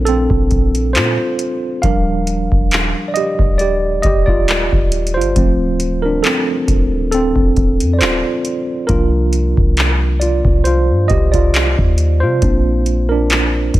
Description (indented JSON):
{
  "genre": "contemporary R&B",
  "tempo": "68 BPM",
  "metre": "4/4",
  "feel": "swing 54% on 16ths",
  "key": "unclear",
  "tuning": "A4 = 440 Hz",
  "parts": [
    { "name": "mellow tine electric piano", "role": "accompaniment", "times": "0.0-13.8 s", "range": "F3 to F5", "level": "-17 LUFS", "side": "right 2 dB", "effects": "medium stereo tremolo" },
    { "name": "clean 808-style bass", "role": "bass", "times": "0.0-13.8 s", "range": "D1 to C3", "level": "-17 LUFS", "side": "equal", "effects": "none" },
    { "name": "booming analog drum machine", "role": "drums", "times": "0.1-13.8 s", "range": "handclaps, hi-hat, kick drum", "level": "-16 LUFS", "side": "equal", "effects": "none" }
  ],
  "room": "little or no reverb",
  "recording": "none",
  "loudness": "-13 LUFS",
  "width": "side -15 dB against mid",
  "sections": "0.0-13.8 A section",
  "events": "tine electric piano solo 0.0-13.8",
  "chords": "0.0 Bbmaj9; 1.8 Ebmaj7; 5.4 Dm7; 8.9 C7sus4; 12.4 Bbadd9",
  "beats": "0.07 0.95 | 1.83 2.71 3.60 4.48 | 5.36 6.25 7.13 8.01 | 8.89 9.77 10.66 11.54 | 12.42 13.30"
}